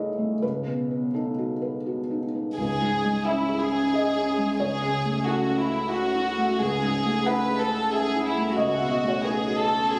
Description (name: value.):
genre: neoclassical piano and strings.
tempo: 89 BPM.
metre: 3/4.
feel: rubato.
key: C# minor.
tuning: A4 = 440 Hz.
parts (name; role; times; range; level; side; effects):
felt-muted upright piano; accompaniment; 0.0-10.0 s; C#2 to F#5; -28 LUFS; equal; none.
warm chamber violin section; melody; 2.6-10.0 s; E4 to B4; -28 LUFS; equal; none.
soft additive organ-like pad; sustained chords; 2.6-10.0 s; C#4 to G#5; -36 LUFS; equal; ensemble chorus, built-in reverb.
punchy sub bass; bass; 2.6-10.0 s; C#2; -43 LUFS; equal; none.
room: moderate huge ambient reverb, RT60 4.7 s.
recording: recorded on a phone in the room, club reverb, compression.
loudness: -25 LUFS.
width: mono.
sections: 0.0-2.6 A section; 2.6-10.0 A section.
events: none.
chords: 0.4 B7/C#; 2.6 C#m; 4.6 F#m7/C#; 6.6 Amaj7/C#; 8.6 B7/C#.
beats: | 0.42 1.15 1.86 | 2.57 3.26 3.94 | 4.60 5.26 5.92 | 6.59 7.27 7.92 | 8.58 9.25 9.92.